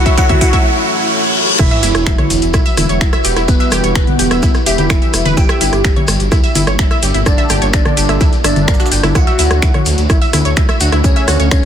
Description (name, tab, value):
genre	melodic techno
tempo	127 BPM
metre	4/4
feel	straight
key	E dorian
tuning	A4 = 440 Hz
part	fat analog lead	melody	0.0-11.7 s	B3 to G4	-20 LUFS	right 1 dB	chorus, phaser, sidechain pumping, tape echo
part	glassy wavetable pluck	second line	0.0-11.7 s	B4 to G5	-25 LUFS	left 1 dB	chorus, cassette tape, sidechain pumping, ping-pong delay
part	deep dark ambient pad	sustained chords	0.0-11.7 s	G3 to C#5	-22 LUFS	equal	chorus, built-in reverb, sidechain pumping
part	riser, reverse cymbal and sub drop	sound effects	0.0-3.5 s	none	-18 LUFS	left 1 dB	none
part	wide unison pluck	arpeggios	0.1-11.4 s	E4 to G6	-19 LUFS	right 1 dB	sidechain pumping, ping-pong delay
part	electronic kick drum	drums	0.1-11.6 s	none	-13 LUFS	equal	overdrive
part	techno drum kit	drums	0.1-11.6 s	congas, crash cymbal, finger snaps, hi-hat, rim click	-18 LUFS	left 2 dB	soft clipping on snare
part	dusty soul sampler-style drum kit	drums	0.2-11.6 s	hi-hat, shaker, snare drum	-30 LUFS	right 4 dB	none
part	dark detuned saw bass	bass	1.6-11.6 s	E1 to D2	-17 LUFS	equal	sidechain pumping
part	shekere	percussion	1.6-11.6 s	none	-26 LUFS	left 1 dB	none
room	light reverb, digital ambience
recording	dense, heavily limited modern master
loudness	-10 LUFS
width	side -9 dB against mid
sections	0.0-1.6 A section; 1.6-11.7 B section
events	build-up 0.0-1.6; drum fill 0.0-0.6; riser 0.0-1.6; filter sweep on ambient pad 0.0-1.6; break 0.6-1.6; reverse cymbal 0.6-1.6; drop 1.6-11.7; impact 1.6-3.5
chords	0.0 F#m7; 1.6 Emadd9; 5.4 Gm; 9.2 D